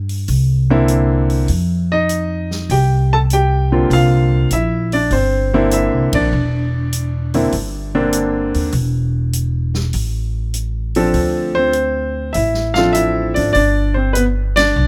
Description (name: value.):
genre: jazz piano trio.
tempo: 100 BPM.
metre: 4/4.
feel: swing 69% on 8ths.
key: C mixolydian.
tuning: A4 = 440 Hz.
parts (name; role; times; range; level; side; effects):
upright bass; bass; 0.0-14.9 s; E1 to G2; -20 LUFS; equal; none.
swinging big-band drum kit; drums; 0.1-14.7 s; hi-hat, kick drum, ride cymbal, snare drum; -30 LUFS; equal; none.
warm baby grand piano; melody; 0.7-14.9 s; D3 to A5; -18 LUFS; equal; none.
room: light reverb.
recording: none.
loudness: -17 LUFS.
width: mono.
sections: 0.0-14.9 A section.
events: band accent 6.0-6.3, 14.5-14.8.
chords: 0.3 C9; 1.5 F7sus2; 3.9 C9; 8.7 N.C.; 11.1 Dm7; 13.6 G5.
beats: 0.28 0.89 | 1.49 2.10 2.70 3.31 | 3.91 4.51 5.12 5.72 | 6.33 6.93 7.53 8.14 | 8.74 9.34 9.94 10.55 | 11.15 11.75 12.35 12.95 | 13.55 14.16 14.76.